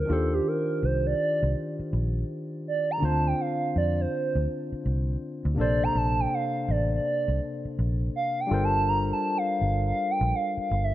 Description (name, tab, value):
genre	R&B, neo-soul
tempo	82 BPM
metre	4/4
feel	swing 63% on 16ths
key	D minor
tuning	A4 = 440 Hz
part	hollow clarinet-like synth lead	melody	0.0-10.9 s	G4 to Bb5	-28 LUFS	right 2 dB	chorus, slapback echo
part	barky tine electric piano	accompaniment	0.0-10.9 s	C3 to C5	-31 LUFS	left 3 dB	none
part	vintage muted fingered electric bass	bass	0.0-10.9 s	G1 to F2	-26 LUFS	equal	none
room	digital ambience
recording	none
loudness	-24 LUFS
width	side -14 dB against mid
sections	0.0-10.9 A section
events	soft synth lead solo 0.0-10.9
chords	0.1 Ebmaj13; 3.0 Dm7; 5.6 Bbmaj9; 8.5 Gm11